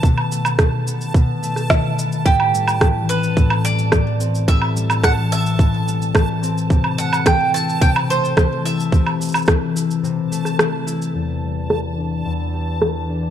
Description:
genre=folktronica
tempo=108 BPM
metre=4/4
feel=straight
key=E minor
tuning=A4 = 440 Hz
part: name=concert harp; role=arpeggios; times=0.0-13.3 s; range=E2 to G4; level=-20 LUFS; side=left 3 dB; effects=low-pass filter
part: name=electronic kick drum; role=drums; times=0.0-9.6 s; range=none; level=-15 LUFS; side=right 1 dB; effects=none
part: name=organic electronic drum kit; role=drums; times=0.0-13.3 s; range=hi-hat, rim click, shaker, woodblock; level=-21 LUFS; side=right 1 dB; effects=low-pass filter on perc, low-pass filter on snare, low-pass filter on hats, low-pass filter on room
part: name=backwards swelling texture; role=texture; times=0.0-13.3 s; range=A5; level=-29 LUFS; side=right 2 dB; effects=built-in reverb
part: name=bowl-back mandolin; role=melody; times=2.3-9.7 s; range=G4 to A5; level=-21 LUFS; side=right 4 dB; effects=none
room=light reverb, digital ambience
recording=dark, warm production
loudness=-16 LUFS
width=side -10 dB against mid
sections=0.0-11.1 A section; 11.1-13.3 B section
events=break 10.0-11.1; filter sweep on harp 11.1-13.3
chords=0.0 B7; 2.3 Am7; 6.7 C6; 11.1 Em7

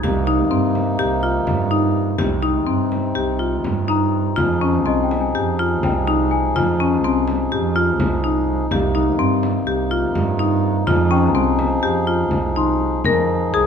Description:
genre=contemporary instrumental, chamber music in an uneven meter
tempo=249 BPM (eighths)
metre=9/8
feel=straight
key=F minor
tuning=A4 = 440 Hz
part: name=hand-pumped harmonium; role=sustained chords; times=0.0-13.7 s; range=C3 to Ab4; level=-24 LUFS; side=equal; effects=none
part: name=marimba with medium hard mallets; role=arpeggios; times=0.0-13.7 s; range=C4 to Bb4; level=-20 LUFS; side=left 5 dB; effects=none
part: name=clear double bass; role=bass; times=0.0-13.7 s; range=C2 to G2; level=-22 LUFS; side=right 7 dB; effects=none
part: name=frame drum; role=percussion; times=0.0-13.7 s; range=none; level=-26 LUFS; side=left 2 dB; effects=none
part: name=worn celesta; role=texture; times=0.0-0.5, 3.9-13.7 s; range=Eb5 to Ab6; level=-26 LUFS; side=left 8 dB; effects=none
room=light reverb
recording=close, detailed microphones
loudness=-16 LUFS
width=side -7 dB against mid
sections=0.0-13.0 A section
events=none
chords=0.0 Cm7; 4.4 Fm7; 8.7 Cm7; 10.9 Fm7

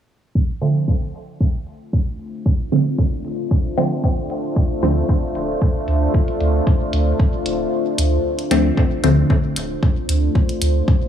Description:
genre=dub techno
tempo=114 BPM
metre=4/4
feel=straight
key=D minor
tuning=A4 = 440 Hz
part: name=deep dark ambient pad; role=sustained chords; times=2.1-11.1 s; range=A3 to C5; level=-23 LUFS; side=left 1 dB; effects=chorus, built-in reverb, sidechain pumping
part: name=electronic kick drum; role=drums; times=0.4-11.0 s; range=none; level=-17 LUFS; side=equal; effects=none
part: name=filtered dub chord stab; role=stabs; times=0.6-11.1 s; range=D3 to C4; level=-20 LUFS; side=equal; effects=phaser, sidechain pumping, dub echo
part: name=electronic hi-hat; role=drums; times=0.6-10.7 s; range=none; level=-27 LUFS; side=equal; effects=none
part: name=warm sub bass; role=bass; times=4.8-10.8 s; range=D1 to D2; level=-19 LUFS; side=right 1 dB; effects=sidechain pumping
room=moderate echo chamber reverb, RT60 2.2 s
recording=low-pass filter, studio ambience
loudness=-16 LUFS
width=side -9 dB against mid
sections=0.4-8.8 A section; 8.8-11.1 B section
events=filter sweep on synth stab 0.4-8.8, 8.8-11.1; filter sweep 0.4-8.8; kick drops out 7.7-8.8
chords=0.4 Dm7

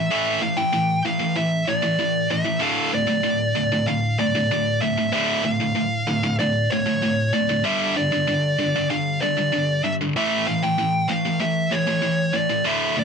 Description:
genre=metal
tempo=96 BPM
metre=4/4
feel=straight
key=D harmonic minor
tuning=A4 = 439 Hz
part: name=high-gain lead guitar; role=melody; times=0.0-13.0 s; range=C#5 to G5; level=-23 LUFS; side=equal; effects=distortion
part: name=tight distorted guitar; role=riff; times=0.0-13.0 s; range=D2 to A3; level=-22 LUFS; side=equal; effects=distortion
room=light reverb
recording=none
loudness=-19 LUFS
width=side -6 dB against mid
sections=0.0-13.0 A section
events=none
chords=0.0 A5; 2.6 Dm; 7.6 G5; 10.2 A

